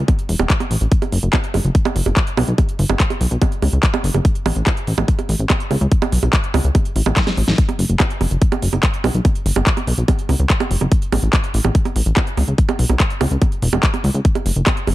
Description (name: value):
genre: psychedelic trance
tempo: 144 BPM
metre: 4/4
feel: straight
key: unclear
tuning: A4 = 440 Hz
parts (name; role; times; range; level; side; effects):
- plucky analog bass; bass; 0.0-14.9 s; E1 to C#2; -17 LUFS; equal; none
- big-room dance drum kit; drums; 0.1-14.9 s; bongos, handclaps, hi-hat, snare drum; -21 LUFS; right 3 dB; none
- electronic kick drum; drums; 0.1-14.7 s; none; -16 LUFS; equal; none
room: little or no reverb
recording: dark, warm production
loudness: -15 LUFS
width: side -16 dB against mid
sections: 0.0-14.9 A section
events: drum fill 7.2-7.6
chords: none